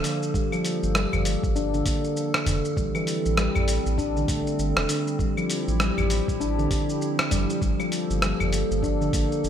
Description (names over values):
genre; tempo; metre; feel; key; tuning
organic downtempo; 99 BPM; 4/4; swing 60% on 16ths; G dorian; A4 = 441 Hz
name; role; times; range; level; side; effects
warbly tape-like pad; sustained chords; 0.0-9.5 s; F3 to A4; -30 LUFS; right 2 dB; chorus, built-in reverb, sidechain pumping
handpan; arpeggios; 0.0-9.5 s; D3 to G4; -27 LUFS; left 2 dB; ping-pong delay
dusty soul sampler-style drum kit; drums; 0.0-9.5 s; claves, hi-hat, rim click, shaker; -29 LUFS; equal; gated reverb
electronic kick drum; drums; 0.3-9.3 s; none; -28 LUFS; equal; none
warm sub bass; bass; 0.8-9.5 s; E1 to A1; -27 LUFS; equal; sidechain pumping
udu; percussion; 1.1-8.5 s; none; -30 LUFS; left 1 dB; none
room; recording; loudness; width
moderate plate reverb, RT60 2.7 s; bright 1980s-style digital production; -22 LUFS; side -9 dB against mid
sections
0.0-9.5 A section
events
none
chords
0.0 Gm9; 2.8 Am7; 5.2 Dm11/A (rootless); 7.6 Gm9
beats
| 0.34 0.95 1.55 2.16 | 2.77 3.37 3.98 4.58 | 5.19 5.80 6.40 7.01 | 7.61 8.22 8.83 9.43